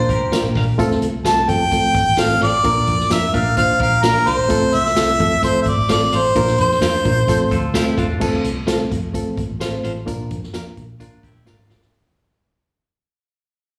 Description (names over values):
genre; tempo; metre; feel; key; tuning
uptempo 1960s-style soul; 129 BPM; 4/4; straight; F major; A4 = 438 Hz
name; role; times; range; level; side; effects
clear harmonica; melody; 0.0-8.0 s; Bb4 to A5; -19 LUFS; equal; slapback echo
reed electric piano; accompaniment; 0.0-11.8 s; A3 to C5; -24 LUFS; equal; slapback echo
semi-hollow electric guitar; riff; 0.0-4.5, 7.5-11.9 s; Bb3 to Bb4; -32 LUFS; equal; slapback echo
vintage muted fingered electric bass; bass; 0.0-11.9 s; E1 to Bb2; -26 LUFS; equal; none
swinging big-band drum kit; drums; 0.1-11.9 s; crash cymbal, hi-hat, kick drum, snare drum; -27 LUFS; equal; none
congas; percussion; 0.1-11.8 s; none; -36 LUFS; equal; none
electric guitar at the edge of break-up; stabs; 0.3-11.8 s; F4 to F5; -29 LUFS; equal; slapback echo
tambourine; percussion; 0.3-11.6 s; none; -38 LUFS; equal; none
room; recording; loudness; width
light reverb; live gig heard through the venue's PA, recital hall reverb, studio ambience; -17 LUFS; mono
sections
0.0-8.2 A section; 8.2-11.9 B section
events
fade-out 8.2-11.9; drum fill 11.5-11.9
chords
0.0 Bb; 0.8 F; 2.6 Bb; 4.5 F; 6.4 Bb; 7.3 F; 10.1 Bb